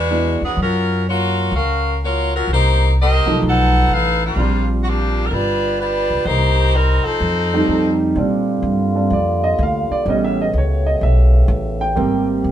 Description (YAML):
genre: jazz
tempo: 126 BPM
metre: 4/4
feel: swing 66% on 8ths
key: Bb major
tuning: A4 = 440 Hz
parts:
  - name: edgy saxophone section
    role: melody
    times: 0.0-8.0 s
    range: F3 to F#5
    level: -18 LUFS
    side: left 1 dB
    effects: none
  - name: upright bass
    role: bass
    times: 0.0-12.5 s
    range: G1 to Bb2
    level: -18 LUFS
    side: equal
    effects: none
  - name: clear baby grand piano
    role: accompaniment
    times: 0.1-0.4, 3.3-12.5 s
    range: F3 to G5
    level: -19 LUFS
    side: right 2 dB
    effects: none
  - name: muted trombone section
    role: sustained chords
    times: 8.2-12.5 s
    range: C3 to G4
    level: -24 LUFS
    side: equal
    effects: none
room: moderate studio reverb, RT60 0.6 s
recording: band playing live in one room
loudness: -15 LUFS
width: side -10 dB against mid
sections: 0.0-8.2 A section; 8.2-12.5 B section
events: grand piano solo 8.2-12.5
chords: 0.0 E9; 0.6 Gbmaj7; 2.5 Cm7; 3.4 B7#11; 4.4 Bb6; 5.3 G7; 6.3 Cm7; 7.2 F7; 8.2 Bb6; 10.1 A9; 12.0 Abmaj9